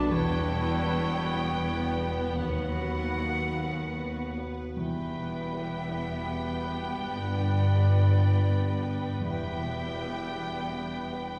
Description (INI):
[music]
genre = cinematic, emotional film score for orchestra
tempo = 49-54 BPM (dotted quarters)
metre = 6/8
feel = rubato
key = unclear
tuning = A4 = 440 Hz
[part]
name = muted symphonic violin section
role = melody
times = 0.0-11.4 s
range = F#5 to G5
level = -41 LUFS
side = equal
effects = none
[part]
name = bright silver concert flute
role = second line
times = 0.0-11.2 s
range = D5 to A5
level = -42 LUFS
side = equal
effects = none
[part]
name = muted studio violin section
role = second line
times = 0.0-11.4 s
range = B4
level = -46 LUFS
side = equal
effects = none
[part]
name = warm clarinet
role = second line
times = 0.0-11.2 s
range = D4 to G4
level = -46 LUFS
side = equal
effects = none
[part]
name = warm oboe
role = second line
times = 0.0-11.4 s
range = B4 to D5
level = -43 LUFS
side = equal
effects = none
[part]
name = dark baby grand piano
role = accompaniment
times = 0.0-11.4 s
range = D#2 to B4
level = -38 LUFS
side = equal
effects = none
[part]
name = muted studio viola section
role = accompaniment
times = 0.0-11.4 s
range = B3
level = -43 LUFS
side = equal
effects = none
[part]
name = mellow French horn section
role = sustained chords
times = 0.0-11.4 s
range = F#3 to B3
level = -42 LUFS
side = equal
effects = none
[part]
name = muted studio cello section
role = bass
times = 0.0-11.4 s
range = D#2 to B2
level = -33 LUFS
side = equal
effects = none
[part]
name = muted studio double bass section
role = bass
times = 0.0-11.4 s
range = E1 to D#2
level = -36 LUFS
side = equal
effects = none
[sound]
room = wet scoring stage reverb, RT60 1.8 s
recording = heard from further back in the room, studio reverb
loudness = -29 LUFS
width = mono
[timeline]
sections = 0.0-11.4 A section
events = none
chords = 0.1 Em; 2.4 B/D#; 4.8 Em; 7.0 G; 9.2 Em